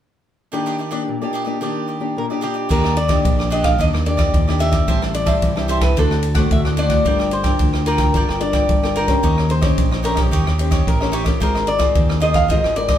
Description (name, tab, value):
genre	samba and choro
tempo	110 BPM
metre	4/4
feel	straight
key	Eb major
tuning	A4 = 442 Hz
part	cavaquinho	accompaniment	0.5-13.0 s	D4 to A5	-27 LUFS	right 4 dB	none
part	nylon-string guitar	accompaniment	0.5-13.0 s	A2 to C5	-24 LUFS	left 3 dB	none
part	lap resonator guitar	melody	2.2-13.0 s	G4 to F5	-21 LUFS	left 1 dB	none
part	modern bright fingered electric bass	bass	2.7-13.0 s	G1 to Eb2	-20 LUFS	equal	none
part	open jazz drum kit	drums	2.7-13.0 s	crash cymbal, kick drum, ride cymbal, rim click	-20 LUFS	equal	none
room	wet studio reverb, RT60 0.6 s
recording	heard from further back in the room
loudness	-15 LUFS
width	side -10 dB against mid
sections	0.5-2.7 A section; 2.7-13.0 B section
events	none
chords	0.5 Ebmaj7; 4.9 Am7; 6.0 D7; 7.1 Gm7; 9.2 Eb13; 11.4 Ab69